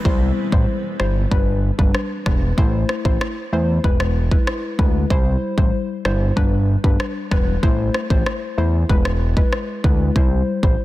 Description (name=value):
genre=dancehall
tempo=95 BPM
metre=4/4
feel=straight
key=unclear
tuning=A4 = 440 Hz
part: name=soft round pluck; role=accompaniment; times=0.0-10.8 s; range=G3 to C5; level=-23 LUFS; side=left 2 dB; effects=chorus
part: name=fat analog bass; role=bass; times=0.1-10.8 s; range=E1 to E2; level=-20 LUFS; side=equal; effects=none
part: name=deep house drum kit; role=drums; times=0.1-10.8 s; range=kick drum, rim click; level=-19 LUFS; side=equal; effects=none
room=little or no reverb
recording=dense, heavily limited modern master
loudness=-16 LUFS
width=side -16 dB against mid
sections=0.1-10.8 A section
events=none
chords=0.1 C; 1.3 G; 2.6 Am; 3.8 E; 5.1 C; 6.4 G; 7.6 Am; 8.9 E; 10.2 C